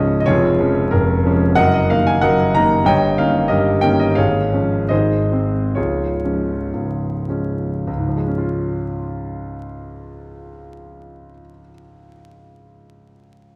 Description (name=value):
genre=classical, romantic character piece for solo piano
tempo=51-94 BPM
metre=2/4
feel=rubato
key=Db major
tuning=A4 = 440 Hz
part: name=warm concert grand piano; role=solo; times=0.0-13.6 s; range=Db1 to Bb5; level=-18 LUFS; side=equal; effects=none
room=wet recital hall reverb, RT60 1.5 s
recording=dark, warm production, vinyl crackle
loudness=-18 LUFS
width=mono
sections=0.0-7.9 A section; 7.9-12.2 B section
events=slowing down 3.5-7.9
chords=0.3 Db/F; 1.6 Ebm/Gb; 2.8 Eb7/G; 4.2 Db/Ab; 4.9 Ab; 5.8 Db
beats=| 0.25 0.90 | 1.56 2.21 | 2.85 3.49 | 4.15 4.89 | 5.76 6.73 | 7.87 8.98 | 10.09 11.15